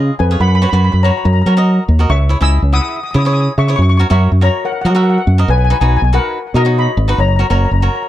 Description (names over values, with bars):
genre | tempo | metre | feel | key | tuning
calypso | 142 BPM | 4/4 | straight | unclear | A4 = 440 Hz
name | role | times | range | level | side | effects
steel pan | melody | 0.0-8.1 s | F#4 to E6 | -19 LUFS | left 4 dB | ping-pong delay
cavaquinho | accompaniment | 0.0-8.1 s | D#4 to E5 | -21 LUFS | right 2 dB | none
fingered electric bass | bass | 0.0-7.9 s | F#1 to F#3 | -11 LUFS | equal | none
room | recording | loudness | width
light reverb | dark, warm production | -11 LUFS | side -13 dB against mid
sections
0.0-8.1 A section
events
none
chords
0.4 F#sus4; 1.3 F#; 2.1 C#m; 3.8 F#; 5.5 B; 7.2 F#